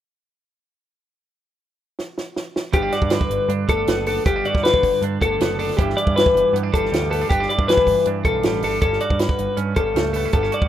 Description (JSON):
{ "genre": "math rock and midwest emo", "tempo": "158 BPM", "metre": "4/4", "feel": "straight", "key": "G lydian", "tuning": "A4 = 445 Hz", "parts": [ { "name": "compact cocktail drum kit", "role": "drums", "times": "2.0-10.7 s", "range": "hi-hat, kick drum, snare drum", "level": "-22 LUFS", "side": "right 1 dB", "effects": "none" }, { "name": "twelve-string electric guitar", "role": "accompaniment", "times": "2.7-10.7 s", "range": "D2 to F#4", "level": "-26 LUFS", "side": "right 10 dB", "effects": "none" }, { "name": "twelve-string electric guitar", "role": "arpeggios", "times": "2.7-10.7 s", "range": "G4 to D5", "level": "-19 LUFS", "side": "left 3 dB", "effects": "none" }, { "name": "growling picked electric bass", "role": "bass", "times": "2.7-10.7 s", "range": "F#1 to G2", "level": "-26 LUFS", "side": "right 1 dB", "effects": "overdrive" } ], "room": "light reverb, small room ambience", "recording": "rough home demo mix", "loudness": "-17 LUFS", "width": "side -11 dB against mid", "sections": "1.2-2.7 A section; 2.7-10.7 B section", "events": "drum fill 2.0-2.7", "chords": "1.2 N.C.; 2.7 Gmaj7; 5.8 Em7/G; 8.8 Dmaj7/G" }